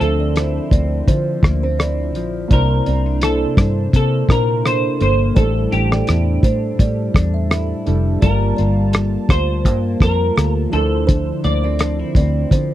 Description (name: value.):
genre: indie pop, bedroom pop.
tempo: 84 BPM.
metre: 4/4.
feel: swing 55% on 16ths.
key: D minor.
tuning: A4 = 440 Hz.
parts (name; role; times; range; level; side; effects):
semi-hollow electric guitar; melody; 0.0-12.7 s; G4 to D5; -22 LUFS; right 1 dB; analog chorus, tape echo.
clean electric guitar; accompaniment; 0.0-12.7 s; A2 to A4; -24 LUFS; left 6 dB; analog chorus, warbly pitch drift.
warm analog keys; accompaniment; 0.0-12.7 s; F3 to A5; -25 LUFS; right 4 dB; chorus.
vintage muted fingered electric bass; bass; 0.0-12.7 s; F1 to D3; -18 LUFS; equal; none.
cloth-damped thuddy drum kit; drums; 0.0-12.7 s; hi-hat, kick drum, rim click; -15 LUFS; equal; none.
kalimba; second line; 0.2-12.7 s; A4 to E5; -26 LUFS; right 3 dB; lush chorus, tape echo.
room: little or no reverb.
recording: dry, close 1970s-style studio recording.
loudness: -14 LUFS.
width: side -13 dB against mid.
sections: 0.0-12.7 A section.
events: none.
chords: 0.0 Dm9; 2.5 C9; 5.4 A7sus4; 8.2 Gm9; 10.7 Dm9.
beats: 0.36 1.08 1.79 | 2.51 3.23 3.94 4.66 | 5.37 6.08 6.80 7.51 | 8.23 8.94 9.66 10.37 | 11.09 11.80 12.51.